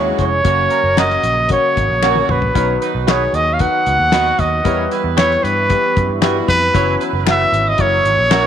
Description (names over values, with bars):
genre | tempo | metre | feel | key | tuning
uptempo 1960s-style soul | 115 BPM | 4/4 | straight | unclear | A4 = 441 Hz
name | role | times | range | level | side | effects
warm horn section | second line | 0.0-8.5 s | B2 to C#5 | -23 LUFS | right 13 dB | none
warm grand piano | accompaniment | 0.0-8.5 s | F#3 to C#5 | -23 LUFS | left 11 dB | none
percussive tonewheel organ | sustained chords | 0.0-8.5 s | C#3 to G#4 | -27 LUFS | right 1 dB | overdrive, chorus vibrato, slow rotary speaker
electric guitar through a small old amp | stabs | 0.0-8.5 s | F#4 to E5 | -24 LUFS | right 11 dB | phaser
vintage muted picked electric bass | bass | 0.0-8.5 s | E#1 to G2 | -21 LUFS | equal | none
mellow trumpet | melody | 0.2-8.5 s | B4 to F#5 | -16 LUFS | equal | none
glockenspiel with soft plastic mallets | second line | 0.2-8.5 s | B5 to F#6 | -26 LUFS | right 13 dB | none
cloth-damped thuddy drum kit | drums | 0.2-8.4 s | hi-hat, kick drum, snare drum, toms | -19 LUFS | left 3 dB | none
finger snaps | percussion | 1.0-8.4 s | none | -27 LUFS | left 11 dB | none
room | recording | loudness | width
light reverb, small room ambience | 1960s-style stereo with parts hard left and right | -13 LUFS | side -9 dB against mid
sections
0.0-8.5 A section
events
drum fill 2.0-2.6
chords
0.5 F#; 2.6 B; 4.6 Em; 6.7 F#7sus4; 7.8 F#7